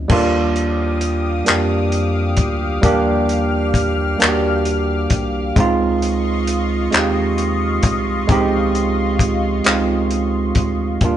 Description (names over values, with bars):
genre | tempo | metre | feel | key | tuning
slow six-eight R&B | 44 BPM (dotted quarters) | 6/8 | straight | Eb major | A4 = 440 Hz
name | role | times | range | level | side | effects
tine electric piano | accompaniment | 0.0-11.2 s | F3 to G4 | -18 LUFS | right 3 dB | overdrive
rubbery square bass | bass | 0.0-11.2 s | C2 to F2 | -22 LUFS | left 1 dB | none
lush unison pad | sustained chords | 0.5-11.2 s | F4 to F6 | -25 LUFS | left 4 dB | chorus, phaser
warm soul drum kit | drums | 0.1-11.2 s | crash cymbal, handclaps, hi-hat, kick drum | -18 LUFS | left 1 dB | none
room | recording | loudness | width
moderate large studio reverb, RT60 1.5 s | band playing live in one room, nothing above 10.4 kHz | -15 LUFS | side -10 dB against mid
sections
0.1-11.0 A section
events
none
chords
0.1 Ebmaj9; 5.6 Dbmaj9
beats
| 0.10 1.47 | 2.83 4.19 | 5.56 6.92 | 8.29 9.65 | 11.01